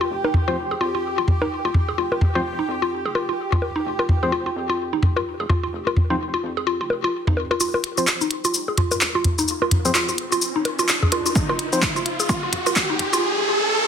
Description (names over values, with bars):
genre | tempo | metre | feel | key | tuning
minimal techno | 128 BPM | 4/4 | swing 59% on 16ths | F minor | A4 = 440 Hz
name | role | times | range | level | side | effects
mallet-like synth pluck | riff | 0.0-13.2 s | Eb4 to Ab4 | -24 LUFS | equal | chorus, vintage 12-bit sampler grit, sidechain pumping, ping-pong delay
rubbery square bass | bass | 0.0-7.5 s | F1 to F2 | -36 LUFS | equal | sidechain pumping, high-pass filter
bubbling stepped-filter texture | texture | 0.0-7.6 s | G4 | -31 LUFS | right 1 dB | chorus, built-in reverb, sidechain pumping
electronic bongos and toms | percussion | 0.2-13.1 s | none | -21 LUFS | equal | studio ambience, tape echo
percussive organ stab | stabs | 0.5-11.8 s | F3 to C5 | -26 LUFS | left 2 dB | chorus, tape echo
minimal click drum kit | drums | 7.6-13.2 s | cabasa, handclaps, hi-hat | -22 LUFS | left 1 dB | studio ambience
riser | sound effects | 10.1-13.9 s | none | -25 LUFS | right 1 dB | none
electronic kick drum | drums | 11.4-12.9 s | none | -24 LUFS | equal | overdrive, studio ambience
room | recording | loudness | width
wet studio reverb, RT60 0.6 s | dense, heavily limited modern master, high-pass filter | -19 LUFS | side -8 dB against mid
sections
0.0-7.6 A section; 7.6-13.9 B section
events
build-up 7.6-13.9; filter sweep on synth arpeggio sound 7.6-13.9; filter sweep on synth stab 7.6-13.9; riser 10.1-13.9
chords
0.0 F5